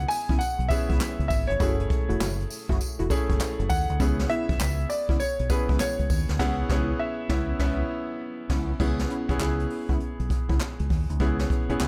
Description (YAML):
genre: R&B, new jack swing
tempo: 100 BPM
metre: 4/4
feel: swing 64% on 16ths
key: unclear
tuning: A4 = 441 Hz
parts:
  - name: warm concert grand piano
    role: melody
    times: 0.0-8.2 s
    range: B4 to G#5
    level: -33 LUFS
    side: equal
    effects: delay
  - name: bright concert grand piano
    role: accompaniment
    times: 0.0-11.9 s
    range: A3 to E5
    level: -34 LUFS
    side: equal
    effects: none
  - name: deep dub fingered electric bass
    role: bass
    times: 0.0-11.9 s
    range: E1 to D#2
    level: -30 LUFS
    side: equal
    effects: none
  - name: jazz brush drum kit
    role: drums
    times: 0.0-11.9 s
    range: crash cymbal, handclaps, hi-hat, kick drum, snare drum, tambourine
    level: -29 LUFS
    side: equal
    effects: none
  - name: funky polysynth comp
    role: stabs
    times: 0.3-11.9 s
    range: A3 to F#4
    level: -36 LUFS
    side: equal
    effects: chorus, delay
room: studio reverb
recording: none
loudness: -26 LUFS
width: mono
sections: 0.0-8.8 A section; 8.8-11.9 B section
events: band accent 6.4-8.8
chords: 0.0 C#m7; 1.6 F#m7; 4.0 C#m7